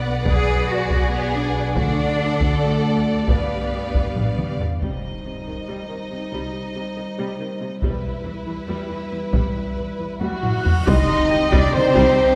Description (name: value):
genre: cinematic, epic orchestral film score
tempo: 278 BPM (eighths)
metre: 7/8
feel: straight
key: C harmonic minor from 4.8 s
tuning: A4 = 439 Hz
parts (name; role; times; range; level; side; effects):
- warm symphonic violin section; melody; 0.0-12.4 s; F#4 to Eb5; -33 LUFS; equal; none
- rich symphonic violin section; second line; 0.0-12.4 s; Eb4 to F#5; -34 LUFS; equal; none
- dark symphonic viola section; accompaniment; 0.0-12.4 s; C3 to D5; -32 LUFS; equal; none
- dark French horn section; sustained chords; 0.0-12.4 s; G3 to F5; -28 LUFS; equal; none
- clear symphonic double bass section; bass; 0.0-12.0 s; E1 to G2; -28 LUFS; equal; none
- rich symphonic cello section; bass; 0.0-12.4 s; E2 to Ab4; -29 LUFS; equal; none
- taiko ensemble; drums; 0.3-12.4 s; none; -25 LUFS; equal; none
- impact and cymbal swell; sound effects; 4.8-6.3, 10.4-12.4 s; none; -36 LUFS; equal; none
- warm trumpet section; stabs; 10.2-12.4 s; F#4 to Eb5; -30 LUFS; equal; none
- mellow large flute ensemble; second line; 10.9-12.4 s; G5 to C6; -30 LUFS; equal; none
- dark tuba; bass; 10.9-12.0 s; C2; -29 LUFS; equal; none
room: wet concert hall reverb, RT60 2.4 s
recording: recorded in a church or concert hall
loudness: -21 LUFS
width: mono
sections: 0.0-4.8 A section; 4.8-10.9 B section; 10.9-12.4 C section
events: drum fill 4.2-4.8, 10.2-10.9; impact 4.8-6.3, 10.9-12.4; cymbal swell 10.4-10.9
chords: 0.0 Bm; 1.8 D; 3.3 G7; 4.8 Cm; 7.8 Em; 10.9 Cm